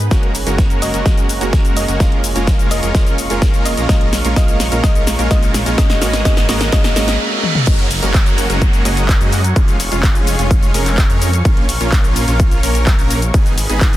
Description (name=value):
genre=EDM, festival progressive house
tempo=127 BPM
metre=4/4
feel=straight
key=F# major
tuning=A4 = 440 Hz
part: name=thumb-piano-like synth pluck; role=melody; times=0.0-7.2 s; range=D#5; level=-26 LUFS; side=left 1 dB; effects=chorus, tape echo
part: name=felt-muted upright piano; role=accompaniment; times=0.0-7.7 s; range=G#2 to G#4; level=-25 LUFS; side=right 2 dB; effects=sidechain pumping, tape echo
part: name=lush unison pad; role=sustained chords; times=0.0-14.0 s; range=G#4 to D#6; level=-27 LUFS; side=equal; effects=chorus, sidechain pumping
part: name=detuned saw bass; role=bass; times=0.0-14.0 s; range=E#1 to F#2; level=-20 LUFS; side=equal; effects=sidechain pumping
part: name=big-room dance drum kit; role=drums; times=0.0-14.0 s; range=crash cymbal, handclaps, hi-hat, shaker, snare drum, toms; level=-21 LUFS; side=left 1 dB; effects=none
part: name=supersaw chords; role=riff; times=0.1-14.0 s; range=G#3 to D#5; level=-21 LUFS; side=right 1 dB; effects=sidechain pumping, tape echo
part: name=electronic kick drum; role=drums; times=0.1-13.9 s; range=none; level=-14 LUFS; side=equal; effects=none
part: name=riser, reverse cymbal and downlifter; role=sound effects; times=3.6-11.5 s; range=none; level=-26 LUFS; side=right 2 dB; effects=none
room=light reverb, digital ambience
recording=dense, heavily limited modern master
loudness=-12 LUFS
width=side -14 dB against mid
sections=0.0-7.7 A section; 7.7-14.0 B section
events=build-up 0.0-7.7; filter sweep on analog synth pad 0.0-7.7; drum fill 0.1-7.2, 7.4; reverse cymbal 6.7-7.7; drop 7.7-14.0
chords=0.1 F#add9; 2.0 C#/E#; 3.9 A#m; 5.8 G#m; 7.7 F#add9; 9.6 C#/E#; 11.5 A#m; 13.3 G#m